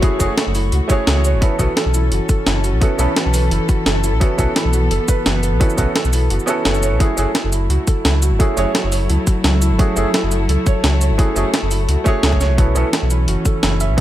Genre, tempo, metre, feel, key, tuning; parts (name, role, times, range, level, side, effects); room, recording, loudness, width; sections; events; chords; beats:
liquid drum and bass; 172 BPM; 4/4; straight; F# minor; A4 = 440 Hz
clear baby grand piano; accompaniment; 0.0-14.0 s; A3 to A4; -23 LUFS; right 2 dB; digital delay
dark chamber string section; sustained chords; 0.0-14.0 s; E3 to A4; -24 LUFS; left 2 dB; sidechain pumping
felt-muted upright piano; arpeggios; 0.0-14.0 s; E4 to E5; -24 LUFS; right 4 dB; digital delay
breakbeat sampler-style drum kit; drums; 0.0-14.0 s; cabasa, hi-hat, snare drum; -20 LUFS; equal
electronic kick drum; drums; 0.0-14.0 s; -16 LUFS; equal
sub bass with octave; bass; 0.2-14.0 s; F#1 to C#2; -17 LUFS; equal
studio ambience; -14 LUFS; side -13 dB against mid
0.0-7.0 A section; 7.0-14.0 A section
drop 0.0-7.0, 7.0-14.0; kick drops out 6.3-7.0
0.0 F#m7; 1.4 B9sus4; 7.0 F#m7; 12.6 B9sus4
| 0.03 0.38 0.72 1.07 | 1.42 1.77 2.12 2.47 | 2.82 3.17 3.51 3.86 | 4.21 4.56 4.91 5.26 | 5.61 5.96 6.30 6.65 | 7.00 7.35 7.70 8.05 | 8.40 8.75 9.10 9.44 | 9.79 10.14 10.49 10.84 | 11.19 11.54 11.89 12.23 | 12.58 12.93 13.28 13.63 | 13.98